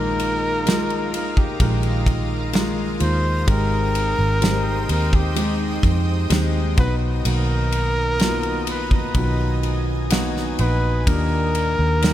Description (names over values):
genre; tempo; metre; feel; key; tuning
pop ballad; 64 BPM; 4/4; straight; unclear; A4 = 439 Hz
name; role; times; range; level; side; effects
warm flugelhorn; melody; 0.0-12.1 s; G4 to C5; -25 LUFS; equal; none
warm concert grand piano; accompaniment; 0.0-12.1 s; Bb2 to Bb4; -27 LUFS; left 6 dB; none
shimmering ambient pad; sustained chords; 0.0-12.1 s; Bb4 to Eb6; -33 LUFS; equal; chorus, built-in reverb
fingerpicked steel-string acoustic guitar; arpeggios; 0.0-12.1 s; Bb2 to G4; -28 LUFS; right 7 dB; none
vintage muted fingered electric bass; bass; 0.0-12.1 s; Ab1 to F2; -22 LUFS; equal; none
modern studio drum kit; drums; 0.2-12.1 s; kick drum, ride cymbal, snare drum; -24 LUFS; equal; none
room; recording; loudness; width
light reverb, small room ambience; none; -18 LUFS; side -12 dB against mid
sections
0.0-12.1 A section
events
none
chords
0.0 Bb7sus4; 3.5 Abmaj7; 6.8 Bmaj7; 11.1 Ebmaj7